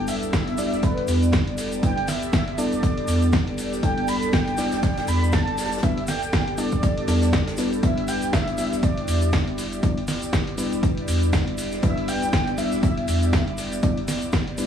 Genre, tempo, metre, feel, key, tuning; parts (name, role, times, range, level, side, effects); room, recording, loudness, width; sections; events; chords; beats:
deep house; 120 BPM; 4/4; swing 58% on 16ths; E minor; A4 = 444 Hz
breathy flute-like synth lead; melody; 0.0-13.5 s; B4 to B5; -30 LUFS; right 1 dB; ensemble chorus, dub echo
airy breathy pad; sustained chords; 0.0-14.7 s; B3 to D5; -32 LUFS; right 2 dB; chorus, phaser, sidechain pumping
mellow FM electric piano; stabs; 0.0-14.7 s; G3 to E5; -27 LUFS; left 2 dB; chorus, sidechain pumping, digital delay
warm sub bass; bass; 0.0-14.7 s; D1 to E2; -27 LUFS; equal; sidechain pumping
dusty soul sampler-style drum kit; drums; 0.1-14.7 s; hi-hat, snare drum; -29 LUFS; equal; studio reverb
natural country drum kit; drums; 0.1-14.7 s; hi-hat, snare drum; -37 LUFS; left 1 dB; high-pass filter on hats, studio reverb, high-pass filter on snare, high-pass filter on room
tube shaker; percussion; 0.1-14.7 s; -38 LUFS; right 2 dB
electronic kick drum; drums; 0.3-14.4 s; -24 LUFS; equal; studio reverb
studio ambience; vinyl crackle, small room ambience; -20 LUFS; side -8 dB against mid
0.0-14.7 A section
0.0 A9sus4; 7.8 Em7
0.33 0.83 1.33 | 1.83 2.33 2.83 3.33 | 3.83 4.33 4.83 5.33 | 5.83 6.33 6.83 7.33 | 7.83 8.33 8.83 9.33 | 9.83 10.33 10.83 11.33 | 11.83 12.33 12.83 13.33 | 13.83 14.33